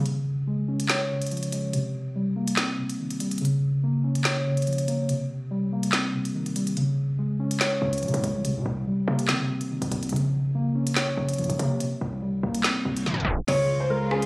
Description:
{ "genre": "hip hop, drill", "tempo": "143 BPM", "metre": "4/4", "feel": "half-time", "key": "C phrygian", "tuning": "A4 = 439 Hz", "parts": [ { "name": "muted felt-like synth keys", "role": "accompaniment", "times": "0.0-14.3 s", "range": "C3 to Db5", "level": "-25 LUFS", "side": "equal", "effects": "chorus" }, { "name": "hard-hitting 808-style bass", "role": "bass", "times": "0.0, 7.8-14.3 s", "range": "Bb1 to Eb3", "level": "-30 LUFS", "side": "equal", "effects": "none" }, { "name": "drill drum kit", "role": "drums", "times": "0.1-14.3 s", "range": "crash cymbal, handclaps, hi-hat, rim click, snare drum", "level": "-28 LUFS", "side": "equal", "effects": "none" }, { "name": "reverse cymbal", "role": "sound effects", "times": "12.8-13.5 s", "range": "none", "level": "-38 LUFS", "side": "left 2 dB", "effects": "none" }, { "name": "dark baby grand piano", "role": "melody", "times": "13.5-14.3 s", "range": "Ab4 to Db5", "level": "-23 LUFS", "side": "equal", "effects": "none" }, { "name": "dark symphonic string section", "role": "sustained chords", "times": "13.5-14.3 s", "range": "Db3 to F4", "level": "-33 LUFS", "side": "equal", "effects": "none" } ], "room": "little or no reverb", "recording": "recorded on a phone in the room, studio reverb, tape stop", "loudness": "-23 LUFS", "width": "side -26 dB against mid", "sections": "0.0-13.5 A section", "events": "break 0.1-6.8; kick muted 6.8-7.6; reverse cymbal 12.8-13.5; drum fill 13.1-13.5; tape stop 13.1-13.5", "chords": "0.1 Db; 1.7 Cm7; 3.4 Bbm; 5.1 Cm7; 6.8 Db; 8.4 Cm7; 10.1 Bbm; 11.8 Cm7; 13.5 Db" }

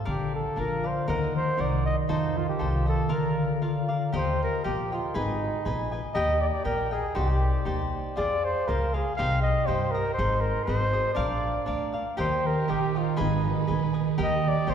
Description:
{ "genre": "mexican folk, mariachi", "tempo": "119 BPM", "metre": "2/4", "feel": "swing 53% on 8ths", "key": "Bb major, Eb major from 4.1 s", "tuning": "A4 = 438 Hz", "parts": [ { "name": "cavaquinho", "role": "accompaniment", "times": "0.0-14.7 s", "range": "D4 to Ab5", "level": "-32 LUFS", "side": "equal", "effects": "none" }, { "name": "upright bass", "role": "bass", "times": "0.0-14.7 s", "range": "Ab1 to G2", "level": "-29 LUFS", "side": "equal", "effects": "none" }, { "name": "dark trumpet", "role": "melody", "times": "0.1-14.7 s", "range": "Eb4 to F5", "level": "-29 LUFS", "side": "equal", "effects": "none" }, { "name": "concert harp", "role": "arpeggios", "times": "0.1-6.1, 12.2-14.7 s", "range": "D3 to Ab4", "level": "-28 LUFS", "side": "right 2 dB", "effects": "none" }, { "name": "warm symphonic violin section", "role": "sustained chords", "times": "12.2-14.7 s", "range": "Ab3 to Cb5", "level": "-40 LUFS", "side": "equal", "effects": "none" } ], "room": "wet concert hall reverb, RT60 2.4 s", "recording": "heard from further back in the room", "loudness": "-24 LUFS", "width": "side -8 dB against mid", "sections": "0.0-4.1 A section; 4.1-14.7 B section", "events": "none", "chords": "0.1 Bb; 1.1 Ebm; 2.1 F7; 3.1 Bb; 4.1 Eb; 5.1 Abm; 6.2 Eb; 7.2 Cmadd9; 8.2 Fm; 9.2 Cm; 10.2 Ab; 11.2 Bb; 12.2 Eb; 13.2 Abm; 14.2 Eb" }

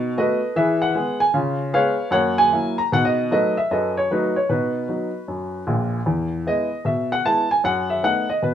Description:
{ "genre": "jazz, stride piano", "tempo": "153 BPM", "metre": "4/4", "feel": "swing 65% on 8ths", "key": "E major", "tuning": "A4 = 440 Hz", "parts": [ { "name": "warm upright piano", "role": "solo", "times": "0.0-8.5 s", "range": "A#1 to A#5", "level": "-18 LUFS", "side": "equal", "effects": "none" } ], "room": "moderate studio reverb, RT60 0.7 s", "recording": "minimal, uncompressed stereo recording", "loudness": "-18 LUFS", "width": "side -9 dB against mid", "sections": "0.0-6.1 A section; 6.1-8.5 A section", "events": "none", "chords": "0.0 B7; 0.6 E; 1.3 C#7; 2.1 F#7; 2.9 B7; 4.5 B; 6.1 E; 7.6 B7/F#" }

